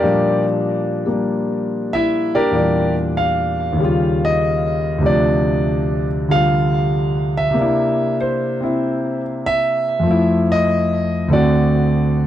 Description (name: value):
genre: solo jazz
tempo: 96 BPM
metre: 4/4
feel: swing 69% on 8ths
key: unclear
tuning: A4 = 440 Hz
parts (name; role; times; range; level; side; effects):
- warm concert grand piano; solo; 0.0-12.3 s; D2 to F5; -15 LUFS; equal; tape echo
room: light reverb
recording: dry, close 1970s-style studio recording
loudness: -15 LUFS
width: side -11 dB against mid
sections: 0.0-12.3 A section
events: grand piano solo 0.0-12.3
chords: 0.0 Bb6; 2.5 Em7b5; 3.8 Eb9; 5.0 Dm7; 7.5 C9; 10.0 Fmaj7; 11.3 D7